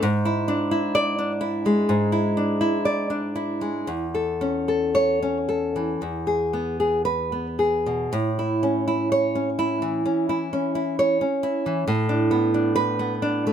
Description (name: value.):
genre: romantic piece for solo classical guitar.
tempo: 55-69 BPM.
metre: 4/4.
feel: rubato.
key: A major.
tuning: A4 = 441 Hz.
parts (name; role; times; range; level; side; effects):
nylon-string guitar; solo; 0.0-13.5 s; E2 to D5; -21 LUFS; equal; none.
room: light reverb.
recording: none.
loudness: -21 LUFS.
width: side -8 dB against mid.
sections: 0.0-13.5 A section.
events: none.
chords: 0.0 E7/G#; 3.9 A/E; 6.0 E; 8.1 A; 11.9 Bm7/A.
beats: | 0.03 0.95 1.87 2.84 | 3.87 4.94 5.99 7.02 | 8.09 9.09 10.05 10.99 | 11.88 12.77.